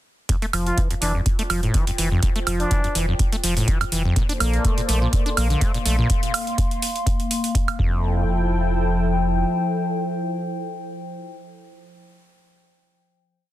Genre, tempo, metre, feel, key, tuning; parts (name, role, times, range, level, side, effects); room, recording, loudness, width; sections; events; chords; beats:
acid house; 124 BPM; 4/4; swing 54% on 16ths; F major; A4 = 439 Hz
acid bass, saw; riff; 0.3-8.2 s; F2 to D4; -25 LUFS; equal; tube saturation, cassette tape, sidechain pumping, ping-pong delay
electronic hi-hat and woodblock; drums; 0.3-7.8 s; -26 LUFS; right 4 dB
electronic kick drum; drums; 0.3-7.9 s; -21 LUFS; equal
warbly tape-like pad; texture; 1.0-11.8 s; F3 to C6; -28 LUFS; equal; chorus, built-in reverb, sidechain pumping
warm sub bass; bass; 0.5-9.4 s; F1 to Bb1; -23 LUFS; equal; tube saturation, sidechain pumping
trumpet with plunger mute; melody; 0.7-3.0 s; D4 to F4; -28 LUFS; equal; digital delay
warm analog pad; sustained chords; 4.2-11.4 s; F3 to G5; -28 LUFS; left 2 dB; chorus, sidechain pumping
light reverb; dense, heavily limited modern master; -19 LUFS; side -14 dB against mid
0.3-8.0 groove; 8.0-11.9 final note
fade-in on ambient pad 0.3-8.0
0.3 Fmaj7sus2; 4.2 Bbmaj9; 7.8 Fmaj9
| 0.29 0.78 1.26 1.74 | 2.23 2.71 3.19 3.68 | 4.16 4.65 5.13 5.61 | 6.10 6.58 7.07 7.55 | 8.03 8.52 9.00 9.48 | 9.97 10.45 10.94 11.42